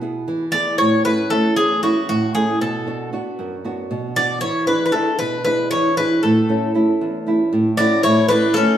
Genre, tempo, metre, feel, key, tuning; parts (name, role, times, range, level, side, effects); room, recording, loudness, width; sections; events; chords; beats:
greek folk, Greek bouzouki band; 232 BPM (eighths); 7/8; straight; A major; A4 = 440 Hz
nylon-string guitar; accompaniment; 0.0-8.8 s; E2 to G#4; -18 LUFS; right 1 dB
Greek bouzouki; melody; 0.5-8.8 s; F#4 to D5; -19 LUFS; left 1 dB
Greek bouzouki; second line; 7.8-8.8 s; C#4 to F#4; -23 LUFS; left 4 dB
wet stone room reverb, RT60 1.3 s; band playing live in one room; -16 LUFS; side -10 dB against mid
0.0-8.0 A section
0.0 E; 0.8 A; 2.6 Bm; 4.4 E7; 6.2 A
0.01 0.27 0.53 | 0.79 1.04 1.30 1.56 1.82 2.08 2.34 | 2.60 2.86 3.12 3.38 3.64 3.90 4.16 | 4.42 4.67 4.93 5.19 5.45 5.71 5.97 | 6.23 6.49 6.75 7.01 7.26 7.52 7.78 | 8.04 8.30 8.56